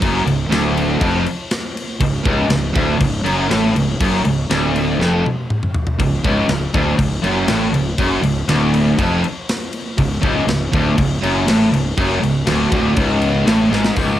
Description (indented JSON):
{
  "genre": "heavy metal",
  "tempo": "120 BPM",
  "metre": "4/4",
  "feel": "straight",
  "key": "unclear",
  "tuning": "A4 = 440 Hz",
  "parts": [
    { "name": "distorted electric guitar", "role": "riff", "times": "0.0-14.2 s", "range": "C#2 to A2", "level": "-19 LUFS", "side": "right 4 dB", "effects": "distortion" },
    { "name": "tight distorted guitar", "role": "riff", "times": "0.0-14.2 s", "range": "C#2 to A2", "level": "-19 LUFS", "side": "left 6 dB", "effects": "distortion" },
    { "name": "fuzz fingered electric bass", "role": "bass", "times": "0.0-14.2 s", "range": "C#1 to A1", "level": "-22 LUFS", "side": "equal", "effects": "overdrive" },
    { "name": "tight metal drum kit", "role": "drums", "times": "0.0-14.1 s", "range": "crash cymbal, hi-hat, kick drum, snare drum, toms", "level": "-21 LUFS", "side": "equal", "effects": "none" }
  ],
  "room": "small room ambience",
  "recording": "home recording on cassette",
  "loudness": "-14 LUFS",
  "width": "side -12 dB against mid",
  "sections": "0.0-14.0 A section",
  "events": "drum fill 5.0-6.0, 13.7",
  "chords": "0.0 C#"
}